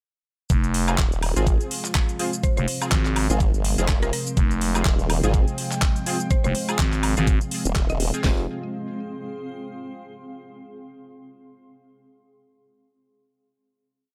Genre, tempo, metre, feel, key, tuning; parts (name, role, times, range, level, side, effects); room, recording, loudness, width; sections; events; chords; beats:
bass house; 124 BPM; 4/4; swing 57% on 16ths; F minor; A4 = 444 Hz
sweeping resonant pad; sustained chords; 0.5-8.5 s; C3 to G5; -35 LUFS; equal; chorus, sidechain pumping
growling FM bass; bass; 0.5-8.5 s; F1 to Ab1; -25 LUFS; equal; overdrive, sidechain pumping
garage drum kit; drums; 0.5-8.4 s; handclaps, kick drum, snare drum; -23 LUFS; equal
garage drum kit; drums; 0.5-8.2 s; handclaps, hi-hat, shaker, woodblock; -30 LUFS; equal
granular cloud pad; texture; 1.3-10.1 s; Ab3 to C6; -38 LUFS; equal; built-in reverb, sidechain pumping
band-passed chord stab; stabs; 0.9-8.4 s; C4 to Ab4; -34 LUFS; equal; ensemble chorus, sidechain pumping, delay
formant-sweep wobble bass; bass; 1.0-8.1 s; Eb1 to Ab1; -26 LUFS; equal; chorus, tube saturation, sidechain pumping
mallet-like synth pluck; melody; 2.4-8.2 s; Bb4 to Eb5; -36 LUFS; equal; chorus, vintage 12-bit sampler grit, delay
little or no reverb; -23 LUFS; mono
0.5-8.2 drop; 8.2-10.2 final chord
drop 0.5-8.2
0.5 Fm
| 0.50 0.98 1.47 1.95 | 2.44 2.92 3.40 3.89 | 4.37 4.86 5.34 5.82 | 6.31 6.79 7.27 7.76 | 8.24 8.73 9.21 9.69